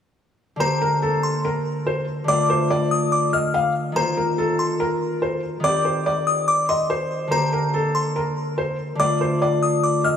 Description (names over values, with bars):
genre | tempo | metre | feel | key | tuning
hip hop | 143 BPM | 4/4 | half-time | G minor | A4 = 440 Hz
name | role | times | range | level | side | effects
felt-muted upright piano | melody | 0.6-10.2 s | A4 to F5 | -23 LUFS | left 1 dB | digital delay
delicate synth tine bell | second line | 0.6-10.2 s | Bb5 to F6 | -24 LUFS | left 2 dB | chorus, digital delay
Celtic harp | accompaniment | 0.6-10.2 s | D3 to G4 | -24 LUFS | equal | none
room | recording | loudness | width
moderate lush hall reverb, RT60 3.1 s | none | -19 LUFS | side -8 dB against mid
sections
0.6-10.2 A section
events
none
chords
0.6 Gm; 2.3 Dm; 4.0 Ebsus2; 5.6 Cm; 7.3 Gm; 9.0 Dm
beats
| 0.60 1.02 1.44 1.86 | 2.28 2.70 3.12 3.54 | 3.96 4.38 4.80 5.22 | 5.64 6.06 6.48 6.90 | 7.32 7.74 8.16 8.58 | 9.00 9.42 9.84